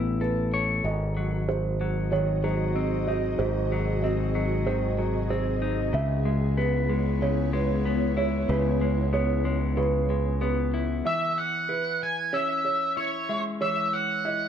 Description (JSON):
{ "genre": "post-rock", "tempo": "94 BPM", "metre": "4/4", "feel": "straight", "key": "E major", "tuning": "A4 = 440 Hz", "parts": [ { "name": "clean electric guitar", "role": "arpeggios", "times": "0.0-14.5 s", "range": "G#2 to C#5", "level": "-30 LUFS", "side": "left 5 dB", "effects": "spring reverb, analog delay" }, { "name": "felt-muted upright piano", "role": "arpeggios", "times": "0.0-14.5 s", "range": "B4 to E5", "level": "-31 LUFS", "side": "right 6 dB", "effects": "analog delay" }, { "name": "growling fingered electric bass", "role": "bass", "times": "0.0-11.0 s", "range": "G#1 to C#2", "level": "-27 LUFS", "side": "equal", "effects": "overdrive" }, { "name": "ethereal airy pad", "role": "sustained chords", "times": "1.7-11.0 s", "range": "B#2 to D#5", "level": "-32 LUFS", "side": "right 1 dB", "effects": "ensemble chorus, built-in reverb" }, { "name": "octave-fuzz lead guitar", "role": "melody", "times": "11.1-14.5 s", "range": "C#5 to G#5", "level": "-26 LUFS", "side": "right 1 dB", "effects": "distortion, analog delay" } ], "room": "light reverb", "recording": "none", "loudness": "-24 LUFS", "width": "side -8 dB against mid", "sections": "0.0-11.1 A section; 11.1-14.5 B section", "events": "none", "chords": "0.0 Aadd9; 0.8 G#7; 5.9 C#m7; 11.1 E69" }